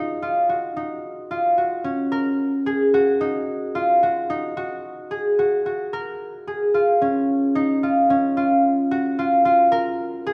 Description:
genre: contemporary instrumental, contemporary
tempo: 110 BPM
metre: 7/4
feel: straight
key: unclear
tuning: A4 = 437 Hz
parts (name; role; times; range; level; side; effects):
- concert harp; solo; 0.0-10.3 s; Db4 to Bb4; -21 LUFS; equal; none
room: moderate recital hall reverb, RT60 1.6 s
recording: recorded in a church or concert hall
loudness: -21 LUFS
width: mono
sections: 0.0-2.1 A section; 2.1-10.3 B section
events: none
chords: 0.0 Gb5; 2.1 Gb6; 9.7 Gb6 (rootless)

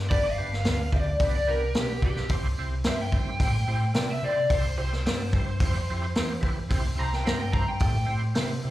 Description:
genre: blues rock power trio and southern rock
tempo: 109 BPM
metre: 4/4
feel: straight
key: unclear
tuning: A4 = 441 Hz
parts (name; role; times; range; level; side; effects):
- picked electric bass; bass; 0.0-8.7 s; G1 to C3; -28 LUFS; equal; none
- lead guitar through a small cranked amp; second line; 0.1-8.1 s; G4 to Bb5; -30 LUFS; left 1 dB; overdrive, slapback echo
- overdriven tonewheel organ; sustained chords; 0.1-8.7 s; B3 to D5; -36 LUFS; right 3 dB; slow rotary speaker, chorus vibrato
- vintage drum kit; drums; 0.1-8.5 s; hi-hat, kick drum, snare drum; -28 LUFS; equal; none
room: small room ambience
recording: live gig heard through the venue's PA, club reverb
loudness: -24 LUFS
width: side -15 dB against mid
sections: 0.0-8.7 A section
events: lead electric guitar solo 0.0-8.7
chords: 0.0 G; 2.3 C

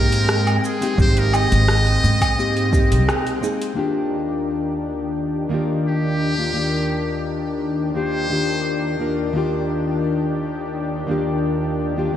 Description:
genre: sunset chillout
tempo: 86 BPM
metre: 4/4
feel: straight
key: Eb major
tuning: A4 = 440 Hz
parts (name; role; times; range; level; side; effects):
- trumpet with metal mute; melody; 0.0-9.0 s; G4 to Eb5; -24 LUFS; equal; digital delay
- nylon-string guitar; accompaniment; 0.0-12.2 s; Eb3 to Bb4; -22 LUFS; left 1 dB; auto-pan, digital delay
- lush unison pad; sustained chords; 0.0-12.2 s; Eb2 to G5; -26 LUFS; left 2 dB; chorus
- upright bass; bass; 0.0-3.1 s; Ab1 to Ab2; -18 LUFS; right 1 dB; tube saturation
- deep house drum kit; drums; 0.1-3.7 s; hi-hat, rim click, shaker, woodblock; -25 LUFS; right 1 dB; low-pass filter on perc, low-pass filter on hats, low-pass filter on snare, low-pass filter on room
- electronic kick drum; drums; 1.0-2.9 s; none; -19 LUFS; equal; none
room: light reverb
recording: played on a big sound system in a bare room, stone room reverb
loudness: -18 LUFS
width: side -10 dB against mid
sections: 0.0-3.8 A section; 3.8-12.2 B section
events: break 3.1-3.8; band accent 3.1-3.4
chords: 0.0 Abmaj9; 3.8 Ebmaj7

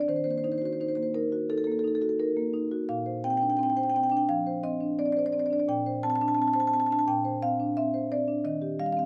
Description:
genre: classical, contemporary piece for solo marimba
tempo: 86 BPM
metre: 4/4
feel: rubato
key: unclear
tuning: A4 = 439 Hz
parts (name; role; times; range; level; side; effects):
- marimba with medium mallets; solo; 0.0-9.1 s; Bb2 to A5; -28 LUFS; equal; none
room: light reverb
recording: none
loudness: -28 LUFS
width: mono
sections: 0.0-9.1 A section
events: none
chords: 0.1 Ebm6; 2.9 Bbadd9; 5.7 Csus2/Bb; 8.4 Eb69

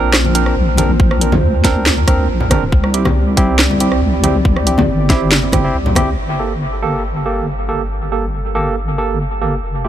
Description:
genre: deep dubstep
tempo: 139 BPM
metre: 4/4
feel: half-time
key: G dorian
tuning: A4 = 440 Hz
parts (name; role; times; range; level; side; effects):
- dark analog pad; sustained chords; 0.0-9.9 s; G3 to D5; -23 LUFS; left 1 dB; chorus
- barky tine electric piano; stabs; 0.0-9.9 s; A3 to Bb4; -19 LUFS; right 3 dB; medium stereo tremolo, low-pass filter, dub echo
- deep soft wobble bass; bass; 0.0-9.9 s; F1 to D2; -17 LUFS; equal; chorus
- garage drum kit; drums; 0.1-6.1 s; hi-hat, rim click, snare drum; -19 LUFS; right 1 dB; overdrive
- congas; percussion; 0.2-6.0 s; none; -20 LUFS; left 2 dB; dub echo
- electronic kick drum; drums; 1.0-6.1 s; none; -13 LUFS; equal; overdrive
room: little or no reverb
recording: none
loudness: -12 LUFS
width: side -11 dB against mid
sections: 0.0-6.2 A section; 6.2-9.9 B section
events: band accent 6.0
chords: 0.0 Bbadd9; 2.7 C; 6.2 Gmadd9

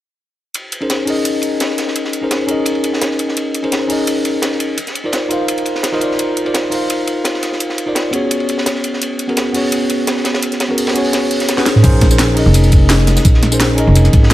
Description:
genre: liquid drum and bass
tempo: 170 BPM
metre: 4/4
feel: swing 53% on 16ths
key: Bb minor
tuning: A4 = 440 Hz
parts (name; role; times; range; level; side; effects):
- drum and bass drum kit; drums; 0.5-14.3 s; crash cymbal, hi-hat, snare drum, tambourine, toms; -17 LUFS; right 1 dB; overdrive
- crunchy breakbeat drum kit; drums; 0.6-14.3 s; hi-hat, ride cymbal, snare drum; -22 LUFS; equal; high-pass filter on cymbals, high-pass filter on hats, high-pass filter on snare, high-pass filter on room
- bell-like tine electric piano; accompaniment; 0.8-14.3 s; Cb4 to F5; -16 LUFS; left 1 dB; ping-pong delay
- upright bass; bass; 11.8-14.3 s; F1 to Bb1; -12 LUFS; equal; none
- electronic kick drum; drums; 11.8-14.2 s; none; -10 LUFS; equal; overdrive
room: light reverb, studio reverb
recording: none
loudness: -13 LUFS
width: side -14 dB against mid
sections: 0.5-11.8 A section; 11.8-14.3 B section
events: drum fill 11.6; drop 11.8-14.3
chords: 0.5 Bbm11; 4.8 Cm11; 8.3 Abm11; 11.8 Bbm11

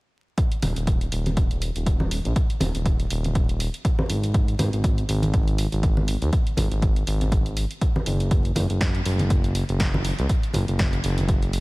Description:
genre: deep house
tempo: 121 BPM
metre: 4/4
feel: swing 56% on 16ths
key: Eb minor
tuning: A4 = 440 Hz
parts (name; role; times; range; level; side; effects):
- electronic kick drum; drums; 0.4-11.4 s; none; -22 LUFS; equal; none
- punchy analog drum machine; drums; 0.4-11.6 s; hi-hat, snare drum; -32 LUFS; right 1 dB; none
- smooth gliding synth bass; bass; 0.6-11.6 s; Eb1 to Eb2; -24 LUFS; equal; sidechain pumping
- congas; percussion; 0.6-11.3 s; none; -30 LUFS; equal; none
room: little or no reverb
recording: vinyl crackle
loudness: -20 LUFS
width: side -23 dB against mid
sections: 0.4-11.6 A section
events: none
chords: none

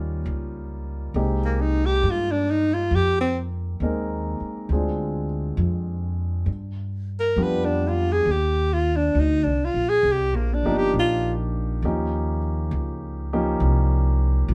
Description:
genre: jazz ballad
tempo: 68 BPM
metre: 4/4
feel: swing 68% on 8ths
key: Eb major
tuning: A4 = 439 Hz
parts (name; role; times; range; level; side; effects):
- warm grand piano; accompaniment; 0.0-14.5 s; F3 to Bb4; -30 LUFS; equal; none
- upright bass; bass; 0.0-14.5 s; G1 to G2; -26 LUFS; equal; none
- clear alto saxophone; melody; 1.4-11.3 s; Bb3 to B4; -24 LUFS; equal; none
room: moderate studio reverb, RT60 0.6 s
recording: band playing live in one room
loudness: -23 LUFS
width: mono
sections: 0.0-14.5 A section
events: alto saxophone solo 0.0-14.5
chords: 0.0 Eb7; 1.1 Abmaj9; 4.7 Dm7b5; 6.5 G7; 8.3 Cm11; 11.8 Eb9

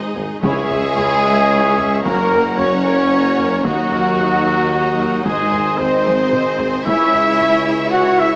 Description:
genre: cinematic, epic orchestral film score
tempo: 112 BPM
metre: 3/4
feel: straight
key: C# dorian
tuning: A4 = 438 Hz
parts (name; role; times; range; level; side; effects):
- warm studio violin section; melody; 0.0-8.4 s; F#4 to F#5; -26 LUFS; equal; none
- flute section; second line; 0.0-8.3 s; F#4 to F#5; -27 LUFS; equal; none
- warm symphonic violin section; second line; 0.0-8.4 s; B#4 to C#6; -33 LUFS; equal; none
- rich symphonic viola section; accompaniment; 0.0-8.4 s; E4 to F#5; -27 LUFS; equal; none
- mellow French horn section; sustained chords; 0.0-8.3 s; F#3 to F#4; -24 LUFS; equal; none
- rich symphonic string section; sustained chords; 0.0-8.4 s; G#3 to F#5; -28 LUFS; equal; none
- warm symphonic cello section; bass; 0.1-8.4 s; G#2 to F#4; -26 LUFS; equal; none
- warm symphonic double bass section; bass; 0.1-8.4 s; G#1 to F#2; -30 LUFS; equal; none
- warm tuba; bass; 0.2-8.3 s; F#1 to D#2; -26 LUFS; equal; none
- taiko ensemble; drums; 0.2-8.4 s; none; -30 LUFS; equal; none
- mellow trumpet; stabs; 0.4-8.4 s; F#4 to F#5; -22 LUFS; equal; none
- timpani; percussion; 0.4-1.2, 5.3-6.0 s; G#2 to C#3; -32 LUFS; equal; none
room: moderate scoring stage reverb, RT60 1.7 s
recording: small speaker sound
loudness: -16 LUFS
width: mono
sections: 0.4-8.4 A section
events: drum fill 6.1-6.9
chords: 0.4 C#m; 2.0 F#; 3.6 D#m; 5.3 G#; 6.9 C#m

